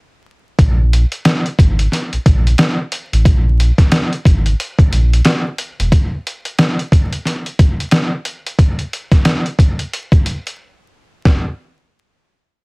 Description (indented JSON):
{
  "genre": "hip hop, boom-bap hip-hop",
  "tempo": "90 BPM",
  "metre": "4/4",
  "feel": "swing 60% on 16ths",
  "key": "unclear",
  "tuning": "A4 = 440 Hz",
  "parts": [
    { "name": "sub bass with octave", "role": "bass", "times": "0.6-5.9 s", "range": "E1 to Bb1", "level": "-13 LUFS", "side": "equal", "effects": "none" },
    { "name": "trip hop sampler-style drum kit", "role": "drums", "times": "0.6-11.4 s", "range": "hi-hat, kick drum, snare drum", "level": "-13 LUFS", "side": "equal", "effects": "none" }
  ],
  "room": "little or no reverb",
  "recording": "heavily compressed radio sound, vinyl crackle",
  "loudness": "-12 LUFS",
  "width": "side -36 dB against mid",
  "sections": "0.6-11.3 A section; 11.3-12.6 B section",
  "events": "break 0.0-0.6, 10.6-11.3",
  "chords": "none"
}